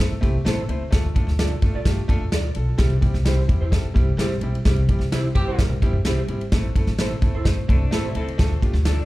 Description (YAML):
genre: uptempo 1960s-style soul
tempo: 129 BPM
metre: 4/4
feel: straight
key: unclear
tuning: A4 = 440 Hz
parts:
  - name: warm concert grand piano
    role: accompaniment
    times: 0.0-9.0 s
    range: G3 to D5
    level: -29 LUFS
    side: left 1 dB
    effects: slapback echo
  - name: upright bass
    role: bass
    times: 0.0-9.0 s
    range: Ab1 to C3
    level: -23 LUFS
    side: equal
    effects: none
  - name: swinging big-band drum kit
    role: drums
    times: 0.0-9.0 s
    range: kick drum, ride cymbal, snare drum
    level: -21 LUFS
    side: equal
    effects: none
  - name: electric guitar through a small old amp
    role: stabs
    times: 0.5-9.0 s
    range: E4 to D5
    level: -33 LUFS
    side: right 4 dB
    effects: ensemble chorus, tape echo
  - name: mellow horn section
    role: second line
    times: 5.1-5.7 s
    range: C3 to G4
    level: -30 LUFS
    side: right 1 dB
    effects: slapback echo
  - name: electric guitar through a small old amp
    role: riff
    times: 7.7-9.1 s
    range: F3 to A4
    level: -34 LUFS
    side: left 5 dB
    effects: wide subtle chorus, slapback echo
room: little or no reverb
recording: live gig heard through the venue's PA, club reverb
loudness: -18 LUFS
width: side -18 dB against mid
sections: 0.0-9.1 A section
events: band accent 4.7-6.5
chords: 0.0 Am; 0.9 Dm; 2.8 C; 6.5 Am; 8.4 Dm